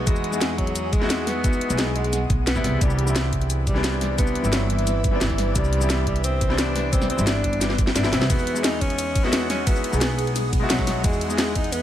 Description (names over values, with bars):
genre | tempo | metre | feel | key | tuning
liquid drum and bass | 175 BPM | 4/4 | straight | unclear | A4 = 440 Hz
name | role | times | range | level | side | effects
breathy alto saxophone | melody | 0.0-11.8 s | E3 to D#4 | -28 LUFS | equal | ping-pong delay
clear baby grand piano | accompaniment | 0.0-11.8 s | E3 to G#4 | -28 LUFS | left 2 dB | digital delay
ethereal airy pad | sustained chords | 0.0-11.8 s | G#4 to D#6 | -32 LUFS | right 2 dB | ensemble chorus, built-in reverb, phaser, sidechain pumping
upright bass | bass | 0.0-11.8 s | G1 to E2 | -25 LUFS | right 1 dB | none
drum and bass drum kit | drums | 0.1-11.8 s | hi-hat, ride cymbal, shaker, snare drum | -25 LUFS | left 1 dB | none
electronic kick drum | drums | 0.1-11.6 s | none | -23 LUFS | equal | none
room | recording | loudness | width
digital ambience | none | -19 LUFS | side -11 dB against mid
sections
0.0-11.8 A section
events
drum fill 7.6-8.3; kick drops out 8.0-8.3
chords
0.0 Emaj9; 2.6 Cmaj9; 8.3 Emaj9